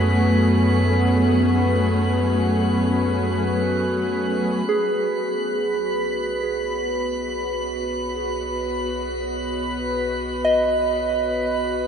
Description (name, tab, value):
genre	ambient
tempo	free time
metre	none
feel	none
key	B mixolydian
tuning	A4 = 442 Hz
part	rich studio string section	sustained chords	0.0-11.9 s	F#3 to D#5	-25 LUFS	equal	none
part	round analog bass	bass	0.0-11.9 s	B1 to F#2	-26 LUFS	equal	none
part	analog drone	drone	0.0-11.9 s	B3 to F#4	-26 LUFS	equal	chorus
part	drifting glass-harmonics texture	texture	0.0-11.9 s	B4 to B5	-26 LUFS	equal	chorus, built-in reverb
part	soft synth bell	arpeggios	4.7-11.9 s	G#4 to D#5	-24 LUFS	right 2 dB	chorus, tape echo
room	wet cathedral reverb, RT60 6.5 s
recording	dark, warm production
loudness	-19 LUFS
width	side -7 dB against mid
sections	0.0-4.7 A section; 4.7-11.9 B section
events	fade-in on analog synth bass 4.7-11.9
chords	0.0 F#m; 4.7 B9